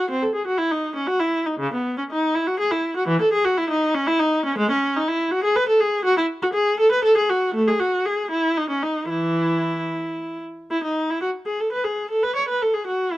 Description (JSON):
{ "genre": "classical, baroque-style suite movement for unaccompanied viola", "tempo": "108-124 BPM", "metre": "3/4", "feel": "rubato", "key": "E major from 4.6 s", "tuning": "A4 = 441 Hz", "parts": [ { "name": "rich viola", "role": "solo", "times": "0.0-13.2 s", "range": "C#3 to C#5", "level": "-19 LUFS", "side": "equal", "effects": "none" } ], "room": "light reverb", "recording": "worn, warbling old tape, cassette tape, warbly pitch drift", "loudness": "-19 LUFS", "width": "side -16 dB against mid", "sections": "0.0-10.7 A section; 10.7-13.2 B section", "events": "none", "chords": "none", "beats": "| 0.09 0.58 1.07 | 1.59 2.10 2.59 | 3.08 3.57 4.07 | 4.58 5.08 5.56 | 6.05 6.55 7.04 | 7.55 8.06 8.57 | 9.10 9.63 10.17 | 10.71 11.22 11.72 | 12.23 12.74" }